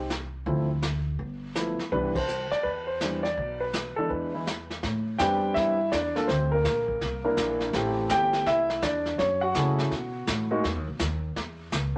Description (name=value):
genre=jazz piano trio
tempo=165 BPM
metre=4/4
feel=swing 65% on 8ths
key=C major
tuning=A4 = 441 Hz
part: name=warm concert grand piano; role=melody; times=0.0-12.0 s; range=E3 to G5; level=-28 LUFS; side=equal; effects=none
part: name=upright bass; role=bass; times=0.0-12.0 s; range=G1 to C#3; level=-34 LUFS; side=equal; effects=none
part: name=vintage brush drum kit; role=drums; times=0.1-12.0 s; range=brushed snare drum, hi-hat, kick drum, ride cymbal, snare drum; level=-36 LUFS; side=equal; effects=none
room=wet studio reverb, RT60 0.5 s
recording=lossy compression artefacts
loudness=-27 LUFS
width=mono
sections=0.0-4.8 A section; 4.8-12.0 B section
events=band accent 2.1; break 4.5-4.8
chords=0.5 Dm9; 1.2 G13; 1.9 Cmaj9; 3.4 Bm; 4.1 E7; 4.8 Am11; 6.3 Bbadd9; 7.0 C9; 7.7 C69/G; 9.2 F#m7; 9.9 B7(no3); 10.6 E5